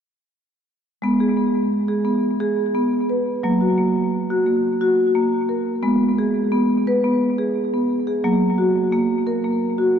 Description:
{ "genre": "world meditative", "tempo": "175 BPM (eighths)", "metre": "7/8", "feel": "straight", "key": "G# minor", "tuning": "A4 = 442 Hz", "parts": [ { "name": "marimba with medium hard mallets", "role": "arpeggios", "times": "1.0-10.0 s", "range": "F#3 to B4", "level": "-17 LUFS", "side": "equal", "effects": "tape echo" } ], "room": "wet church reverb, RT60 3.5 s", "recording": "dark, warm production", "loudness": "-17 LUFS", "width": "side -8 dB against mid", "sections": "1.0-5.8 A section; 5.8-10.0 B section", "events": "none", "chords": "1.0 G#m; 3.4 F#; 5.8 G#m; 8.2 F#", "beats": "| 1.02 1.37 1.71 2.06 2.40 2.74 3.09 | 3.43 3.77 4.12 4.46 4.80 5.15 5.49 | 5.83 6.18 6.52 6.86 7.21 7.55 7.89 | 8.24 8.58 8.92 9.27 9.61 9.95" }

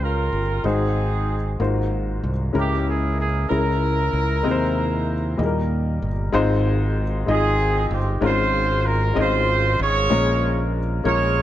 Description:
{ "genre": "slow gospel", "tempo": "64 BPM (dotted quarters)", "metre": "6/8", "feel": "straight", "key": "Ab major", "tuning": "A4 = 440 Hz", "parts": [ { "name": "warm horn section", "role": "melody", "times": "0.0-11.4 s", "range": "Bb3 to Db5", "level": "-23 LUFS", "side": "right 2 dB", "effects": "none" }, { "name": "warm grand piano", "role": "accompaniment", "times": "0.0-11.4 s", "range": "Ab2 to C6", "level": "-24 LUFS", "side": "left 3 dB", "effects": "none" }, { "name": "modern bright fingered electric bass", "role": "bass", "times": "0.0-11.4 s", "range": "G1 to Eb2", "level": "-23 LUFS", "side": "right 1 dB", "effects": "none" } ], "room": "light reverb, small room ambience", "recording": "none", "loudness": "-19 LUFS", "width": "side -12 dB against mid", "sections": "0.0-6.3 A section; 6.3-11.4 B section", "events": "none", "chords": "0.0 Dbmaj7; 0.6 Ab7; 1.6 Ab13; 2.5 Dbm6; 4.4 Ab/Eb; 5.4 Eb; 6.3 Ab6; 8.2 Dbmaj7/Ab; 10.1 Bbm7", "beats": "| 0.65 1.59 | 2.54 3.49 | 4.44 5.38 | 6.33 7.27 | 8.22 9.16 | 10.10 11.04" }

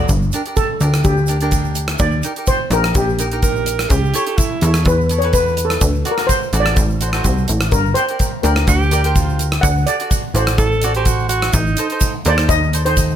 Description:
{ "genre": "calypso", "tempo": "126 BPM", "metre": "4/4", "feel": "swing 54% on 16ths", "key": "G minor", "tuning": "A4 = 440 Hz", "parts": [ { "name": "clear alto saxophone", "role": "second line", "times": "0.0-0.1, 3.4-4.7, 8.7-12.1 s", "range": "Eb4 to Bb4", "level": "-21 LUFS", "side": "right 4 dB", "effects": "none" }, { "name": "cavaquinho", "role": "accompaniment", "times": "0.0-13.2 s", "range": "D4 to D5", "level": "-24 LUFS", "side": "right 2 dB", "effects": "none" }, { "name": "plucky analog bass", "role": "bass", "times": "0.0-13.2 s", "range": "G1 to E2", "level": "-17 LUFS", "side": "equal", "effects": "none" }, { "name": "gated 80s drum kit", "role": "drums", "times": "0.1-13.1 s", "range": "hi-hat, kick drum, rim click", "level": "-19 LUFS", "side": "equal", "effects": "none" }, { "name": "tube shaker", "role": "percussion", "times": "0.1-13.2 s", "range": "none", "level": "-27 LUFS", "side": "right 4 dB", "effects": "none" }, { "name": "steel pan", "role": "melody", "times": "0.6-13.2 s", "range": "G4 to F#5", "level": "-20 LUFS", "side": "left 1 dB", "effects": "ping-pong delay" } ], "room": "light reverb", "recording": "none", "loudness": "-14 LUFS", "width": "side -10 dB against mid", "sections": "0.1-13.2 A section", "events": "steel pan solo 0.1-13.2", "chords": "0.1 Gm; 2.0 Ebmaj7; 3.9 A7/C#; 5.8 D; 7.7 Gm; 9.6 D7; 11.5 Adim", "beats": "| 0.09 0.57 1.05 1.52 | 2.00 2.48 2.96 3.43 | 3.91 4.39 4.87 5.34 | 5.82 6.30 6.77 7.25 | 7.73 8.20 8.68 9.16 | 9.63 10.11 10.59 11.06 | 11.54 12.02 12.49 12.97" }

